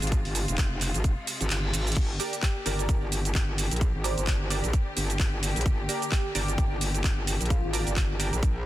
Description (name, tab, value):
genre	bass house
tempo	130 BPM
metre	4/4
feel	swing 57% on 16ths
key	G phrygian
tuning	A4 = 440 Hz
part	rich studio string section	sustained chords	0.0-8.7 s	C3 to G4	-37 LUFS	left 2 dB	sidechain pumping
part	metallic wobble bass	bass	0.0-8.7 s	F1 to Bb1	-29 LUFS	equal	chorus, overdrive, sidechain pumping
part	garage drum kit	drums	0.0-8.5 s	crash cymbal, handclaps, hi-hat, shaker	-32 LUFS	right 2 dB	none
part	electronic kick drum	drums	0.1-8.5 s	none	-25 LUFS	equal	none
part	reverse cymbal	sound effects	1.2-2.0 s	none	-38 LUFS	equal	none
part	airy dreamy lead	melody	2.2-8.0 s	F4 to C5	-37 LUFS	equal	chorus, digital delay
part	band-passed chord stab	stabs	2.2-8.3 s	D4 to D5	-37 LUFS	right 4 dB	chorus, phaser, sidechain pumping, digital delay
room	digital ambience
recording	dense, heavily limited modern master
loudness	-24 LUFS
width	side -14 dB against mid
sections	0.0-8.7 A section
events	reverse cymbal 1.2-2.0; kick drops out 1.5-2.0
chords	0.0 Fm; 2.0 Gm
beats	| 0.12 0.58 1.04 1.50 | 1.97 2.43 2.89 3.35 | 3.81 4.27 4.73 5.20 | 5.66 6.12 6.58 7.04 | 7.50 7.96 8.43